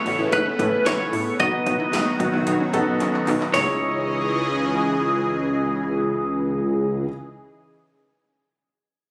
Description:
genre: synth-pop.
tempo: 112 BPM.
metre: 4/4.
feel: straight.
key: C# minor.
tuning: A4 = 439 Hz.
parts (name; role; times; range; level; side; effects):
twelve-string electric guitar; melody; 0.0-7.1 s; B4 to D#5; -28 LUFS; equal; delay.
lush unison pad; sustained chords; 0.0-7.1 s; C#3 to D#5; -28 LUFS; equal; chorus, phaser.
unison pluck; arpeggios; 0.1-7.2 s; C#4 to C#5; -31 LUFS; equal; delay.
chorused synth bass; bass; 0.1-7.1 s; A1 to A2; -27 LUFS; equal; none.
80s electronic pad drums; drums; 0.1-3.7 s; handclaps, hi-hat, kick drum, snare drum, toms; -32 LUFS; equal; gated reverb on snare and toms.
clear concert grand piano; accompaniment; 0.6-7.1 s; B3 to C#5; -30 LUFS; equal; none.
room: light reverb.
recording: recorded on a phone in the room, club reverb.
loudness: -22 LUFS.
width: mono.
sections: 0.0-3.5 A section; 3.5-7.8 B section.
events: drum fill 3.0-3.5.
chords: 0.0 Aadd9; 1.4 B; 3.5 C#madd9.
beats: 0.32 0.86 | 1.40 1.93 2.47 3.00 | 3.54 4.07 4.61 5.15 | 5.68 6.22 6.75.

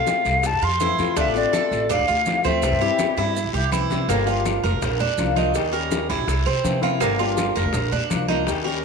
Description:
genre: latin, Cuban son and guajira.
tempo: 164 BPM.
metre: 4/4.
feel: straight.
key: unclear.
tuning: A4 = 442 Hz.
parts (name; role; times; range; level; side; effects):
hollow concert flute; melody; 0.0-3.7 s; D5 to C6; -22 LUFS; left 2 dB; slapback echo.
fingerpicked swing-style acoustic guitar; accompaniment; 0.0-8.8 s; C3 to G4; -27 LUFS; left 11 dB; none.
Cuban tres; arpeggios; 0.0-8.8 s; Bb3 to Bb4; -24 LUFS; right 10 dB; none.
bongos; percussion; 0.1-8.7 s; none; -31 LUFS; left 12 dB; none.
congas; percussion; 0.1-8.8 s; none; -30 LUFS; left 1 dB; none.
guiro; percussion; 0.1-8.8 s; none; -34 LUFS; left 12 dB; none.
maracas; percussion; 0.1-8.8 s; none; -37 LUFS; right 15 dB; none.
upright bass; bass; 0.3-8.8 s; F1 to C3; -26 LUFS; equal; none.
room: moderate echo chamber reverb, RT60 1.5 s.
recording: 1960s-style stereo with parts hard left and right.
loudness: -19 LUFS.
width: side -5 dB against mid.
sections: 0.0-4.1 A section; 4.1-8.8 B section.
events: drum fill 3.2-4.1.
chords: 0.0 Fmaj7; 1.2 Dm7; 2.6 C; 4.1 Gm7; 4.8 Bb; 5.5 Eb7; 6.3 C7; 7.0 Gm7; 7.7 Bb.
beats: 0.07 0.44 0.80 | 1.17 1.53 1.90 2.26 | 2.63 2.99 3.36 3.72 | 4.09 4.45 4.82 5.18 | 5.55 5.91 6.28 6.64 | 7.01 7.37 7.74 8.10 | 8.47 8.83.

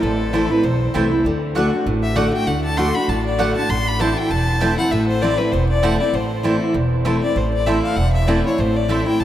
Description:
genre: bluegrass.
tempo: 196 BPM.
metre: 4/4.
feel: swing 55% on 8ths.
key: A dorian.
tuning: A4 = 440 Hz.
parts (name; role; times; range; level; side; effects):
clear fiddle; second line; 0.0-9.2 s; A4 to C6; -23 LUFS; left 3 dB; none.
picked steel-string acoustic guitar; accompaniment; 0.0-9.2 s; E2 to F#4; -19 LUFS; equal; none.
upright bass; bass; 0.0-9.2 s; E1 to D2; -22 LUFS; right 1 dB; none.
mandolin; stabs; 0.3-9.0 s; A3 to A5; -27 LUFS; right 4 dB; none.
room: wet cathedral reverb, RT60 6.1 s.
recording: in a vast, echoing space.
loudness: -16 LUFS.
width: side -12 dB against mid.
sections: 0.0-6.1 A section; 6.1-9.2 A section.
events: fiddle solo 0.0-9.2.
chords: 0.0 Am; 1.2 D; 3.7 Am.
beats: | 0.03 0.33 0.64 0.94 | 1.25 1.55 1.86 2.17 | 2.47 2.78 3.08 3.39 | 3.69 4.00 4.30 4.61 | 4.92 5.22 5.53 5.83 | 6.14 6.45 6.75 7.06 | 7.37 7.67 7.98 8.29 | 8.59 8.90 9.21.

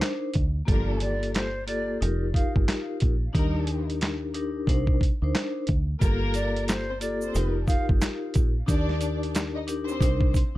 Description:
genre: hip hop, boom-bap hip-hop.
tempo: 90 BPM.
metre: 4/4.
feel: swing 61% on 16ths.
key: G minor.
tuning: A4 = 440 Hz.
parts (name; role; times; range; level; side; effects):
vibraphone with medium mallets; accompaniment; 0.0-10.6 s; Bb3 to C5; -30 LUFS; left 3 dB; high-pass filter, low-pass filter.
dusty soul sampler-style drum kit; drums; 0.0-10.5 s; handclaps, hi-hat, kick drum, snare drum; -25 LUFS; equal; none.
deep dub fingered electric bass; bass; 0.4-10.4 s; F1 to Eb2; -28 LUFS; equal; none.
warm studio string section; stabs; 0.7-10.3 s; F3 to Eb5; -35 LUFS; equal; high-pass filter, low-pass filter, ping-pong delay.
breathy jazz flute; melody; 1.0-7.9 s; C5 to F5; -33 LUFS; equal; high-pass filter, low-pass filter, ping-pong delay.
tube shaker; percussion; 6.0-10.5 s; none; -44 LUFS; right 10 dB; none.
room: light reverb.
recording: dark, warm production.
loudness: -23 LUFS.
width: side -16 dB against mid.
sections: 0.0-6.0 A section; 6.0-10.6 B section.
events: none.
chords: 0.0 Cm9; 0.7 Gm9; 2.0 F9sus4; 3.3 Ebmaj7; 4.7 Cm9; 6.0 Gm9; 7.3 F9sus4; 8.7 Ebmaj7; 10.0 Cm9.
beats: 0.01 | 0.68 1.35 2.01 2.68 | 3.35 4.01 4.68 5.35 | 6.01 6.68 7.35 8.01 | 8.68 9.35 10.01.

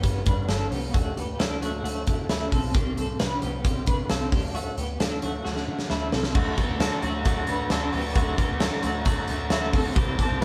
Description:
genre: jangly indie pop.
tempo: 133 BPM.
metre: 4/4.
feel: straight.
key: unclear.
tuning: A4 = 436 Hz.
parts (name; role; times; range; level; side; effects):
twelve-string electric guitar; arpeggios; 0.0-10.4 s; A3 to B4; -33 LUFS; equal; tremolo.
vintage muted picked electric bass; bass; 0.0-10.4 s; G1 to D3; -34 LUFS; equal; none.
big rock drum kit; drums; 0.0-10.4 s; crash cymbal, hi-hat, kick drum, snare drum; -28 LUFS; equal; none.
overdriven semi-hollow guitar; accompaniment; 6.4-10.4 s; C3 to G4; -32 LUFS; equal; none.
room: moderate stone room reverb, RT60 1.0 s.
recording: band playing live in one room.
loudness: -26 LUFS.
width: mono.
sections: 0.0-6.4 A section; 6.4-10.4 B section.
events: drum fill 5.5-6.4.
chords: 0.0 G; 0.9 Dadd9; 2.7 Csus2; 4.3 D.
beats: 0.04 0.49 | 0.94 1.39 1.84 2.29 | 2.74 3.19 3.65 4.10 | 4.55 5.00 5.45 5.91 | 6.36 6.81 7.26 7.71 | 8.16 8.61 9.06 9.51 | 9.96 10.42.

